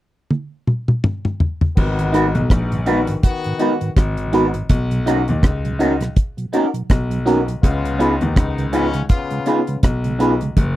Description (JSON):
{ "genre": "lovers rock reggae", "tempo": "82 BPM", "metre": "4/4", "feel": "swing 57% on 16ths", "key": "G# minor", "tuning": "A4 = 440 Hz", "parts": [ { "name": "deep reggae drum kit", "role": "drums", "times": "0.3-10.8 s", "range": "crash cymbal, hi-hat, kick drum, rim click, toms", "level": "-16 LUFS", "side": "equal", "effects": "none" }, { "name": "warm horn section", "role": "second line", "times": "1.8-9.8 s", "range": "G#2 to F#4", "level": "-26 LUFS", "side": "left 5 dB", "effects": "none" }, { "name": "clear grand piano", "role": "bass", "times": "1.8-10.8 s", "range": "F#1 to D#2", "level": "-21 LUFS", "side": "left 1 dB", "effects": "none" }, { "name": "mellow tonewheel organ", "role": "accompaniment", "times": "2.0-10.5 s", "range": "G#2 to F#4", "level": "-26 LUFS", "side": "right 2 dB", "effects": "slow rotary speaker, slapback echo" }, { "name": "FM electric piano", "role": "accompaniment", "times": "2.1-10.4 s", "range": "B3 to A#4", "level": "-19 LUFS", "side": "left 2 dB", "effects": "chorus" }, { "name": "electric guitar through a small old amp", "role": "stabs", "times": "2.1-10.3 s", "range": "C#4 to B4", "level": "-20 LUFS", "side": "right 4 dB", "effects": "phaser" } ], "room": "little or no reverb", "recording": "dry, close 1970s-style studio recording", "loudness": "-16 LUFS", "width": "side -15 dB against mid", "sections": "0.0-1.8 A section; 1.8-10.8 B section", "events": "drum fill 0.3-1.8", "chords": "0.0 N.C.; 1.8 G#m7; 4.7 Bmaj7; 7.6 C#7" }